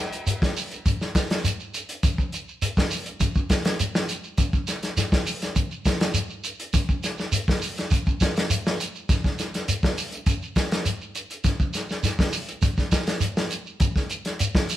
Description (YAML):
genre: afrobeat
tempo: 102 BPM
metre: 4/4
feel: straight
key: none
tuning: none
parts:
  - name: crunchy breakbeat drum kit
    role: drums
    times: 0.1-14.8 s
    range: hi-hat, kick drum, snare drum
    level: -23 LUFS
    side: equal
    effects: none
  - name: shekere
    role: percussion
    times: 0.1-14.8 s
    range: none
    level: -28 LUFS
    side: right 1 dB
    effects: none
room: light reverb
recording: band playing live in one room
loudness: -22 LUFS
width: side -13 dB against mid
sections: 0.0-14.8 A section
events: none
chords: none